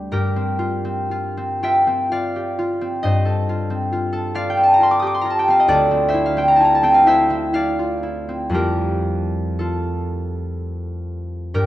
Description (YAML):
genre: classical, solo harp piece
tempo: 57-68 BPM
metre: 3/4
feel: rubato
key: G dorian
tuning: A4 = 439 Hz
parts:
  - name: concert harp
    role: solo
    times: 0.0-11.7 s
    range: D2 to Eb6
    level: -17 LUFS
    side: equal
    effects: none
room: wet scoring stage reverb, RT60 1.6 s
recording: dark, warm production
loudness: -16 LUFS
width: side -14 dB against mid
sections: 0.1-11.7 A section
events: none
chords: 0.1 Gm7; 3.0 F9/G; 5.7 Dm9; 8.5 Fadd9